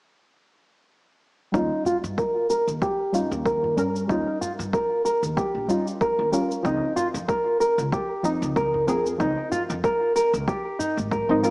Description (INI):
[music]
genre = organic downtempo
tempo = 94 BPM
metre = 4/4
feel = swing 56% on 16ths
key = Eb mixolydian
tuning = A4 = 440 Hz
[part]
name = deep mellow chord stab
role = accompaniment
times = 1.5-11.5 s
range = F3 to Bb4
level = -26 LUFS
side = equal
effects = chorus, sidechain pumping, digital delay
[part]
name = nylon-string guitar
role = arpeggios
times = 1.5-11.5 s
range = Eb4 to Bb4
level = -23 LUFS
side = equal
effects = low-pass filter, digital delay
[part]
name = upright bass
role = bass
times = 1.5-11.5 s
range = Ab1 to G2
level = -30 LUFS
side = equal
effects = sidechain pumping
[part]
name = electronic kick drum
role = drums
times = 1.5-11.3 s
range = none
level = -28 LUFS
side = equal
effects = none
[part]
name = shaker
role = drums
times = 1.5-11.5 s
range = none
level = -39 LUFS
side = equal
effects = none
[part]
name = udu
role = percussion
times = 1.9-11.1 s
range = none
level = -43 LUFS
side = equal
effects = none
[sound]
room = moderate lush hall reverb, RT60 1.7 s, small room reverb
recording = small speaker sound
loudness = -21 LUFS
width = side -26 dB against mid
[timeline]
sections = 1.5-11.5 A section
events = filter sweep on nylon-string guitar 1.5-11.5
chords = 1.5 Eb7; 6.7 Dbmaj7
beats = | 1.54 2.18 2.82 3.46 | 4.10 4.74 5.37 6.01 | 6.65 7.29 7.93 8.56 | 9.20 9.84 10.48 11.12